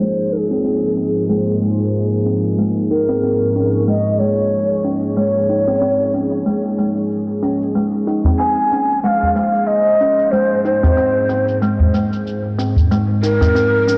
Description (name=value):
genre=organic downtempo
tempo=93 BPM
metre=4/4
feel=swing 57% on 16ths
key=unclear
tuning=A4 = 441 Hz
part: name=breathy mellow ney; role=melody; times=0.0-14.0 s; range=Ab4 to Ab5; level=-20 LUFS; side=equal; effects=tape echo
part: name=warm analog pad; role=sustained chords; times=0.0-14.0 s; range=Ab2 to Db6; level=-23 LUFS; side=equal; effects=chorus
part: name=kalimba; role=arpeggios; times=0.0-14.0 s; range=Ab3 to Eb4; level=-22 LUFS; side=equal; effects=low-pass filter, tape echo
part: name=shaker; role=drums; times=0.0-14.0 s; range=none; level=-38 LUFS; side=equal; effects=small room ambience
part: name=udu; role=percussion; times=8.2-13.5 s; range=none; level=-18 LUFS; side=equal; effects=none
room=wet echo chamber reverb, RT60 2.3 s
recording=blown-out, overdriven recording, overdrive, low-pass filter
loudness=-17 LUFS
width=mono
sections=0.0-14.0 A section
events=filter sweep on kalimba 0.0-14.0; filter sweep 0.0-14.0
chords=0.0 Fm/Ab; 2.6 Bbm11/Ab; 7.7 Absus2; 10.3 Fm/Ab; 12.9 Eb5/Ab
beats=| 0.01 0.65 1.30 1.94 | 2.59 3.23 3.88 4.52 | 5.17 5.81 6.46 7.10 | 7.75 8.39 9.04 9.68 | 10.33 10.97 11.62 12.26 | 12.91 13.55